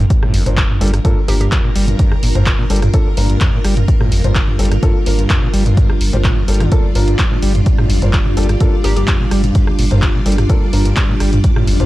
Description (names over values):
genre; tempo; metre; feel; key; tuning
acid house; 127 BPM; 4/4; straight; G minor; A4 = 441 Hz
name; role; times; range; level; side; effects
string machine, full ensemble; sustained chords; 0.0-11.9 s; G3 to D5; -22 LUFS; equal; ensemble chorus, sidechain pumping
overdriven acid bass; riff; 0.0-11.9 s; G1 to G3; -20 LUFS; equal; distortion, analog delay
warm sub bass; bass; 0.0-11.9 s; G1; -16 LUFS; equal; sidechain pumping
electronic kick drum; drums; 0.1-11.5 s; none; -15 LUFS; equal; none
punchy analog drum machine; drums; 0.1-11.9 s; handclaps, hi-hat, rim click, toms; -20 LUFS; equal; none
warm grand piano; stabs; 0.5-11.9 s; Bb3 to C5; -25 LUFS; left 2 dB; analog delay
hollow square pluck; melody; 1.3-1.5, 8.8-9.0 s; G4; -26 LUFS; left 1 dB; chorus, analog delay
room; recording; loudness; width
digital ambience; dry, gritty hardware recording; -11 LUFS; side -16 dB against mid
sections
0.0-11.9 A section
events
none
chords
0.0 Gm7